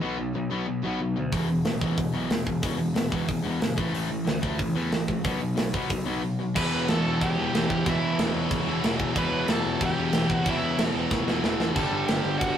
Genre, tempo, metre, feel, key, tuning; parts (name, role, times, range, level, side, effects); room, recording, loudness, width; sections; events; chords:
punk rock; 184 BPM; 4/4; straight; E minor from 6.6 s; A4 = 441 Hz
distorted electric guitar; riff; 0.0-12.6 s; E2 to B3; -30 LUFS; left 6 dB; distortion
sludgy distorted guitar; riff; 0.0-12.6 s; E2 to B3; -32 LUFS; right 5 dB; overdrive
overdriven picked electric bass; bass; 0.0-12.5 s; E1 to E2; -32 LUFS; equal
tight metal drum kit; drums; 1.3-12.5 s; crash cymbal, hi-hat, kick drum, snare drum, splash cymbal; -28 LUFS; right 1 dB
high-gain lead guitar; melody; 6.6-12.6 s; E4 to B5; -30 LUFS; right 2 dB; distortion
distorted electric guitar; riff; 6.6-12.6 s; E2 to G3; -31 LUFS; right 1 dB; overdrive
light reverb; rough rehearsal-room recording; -23 LUFS; side -9 dB against mid
0.0-6.6 A section; 6.6-12.6 B section
drum fill 11.1-11.8
0.0 B5; 1.3 E5; 3.8 A5; 5.2 B5; 6.6 Em; 11.8 G5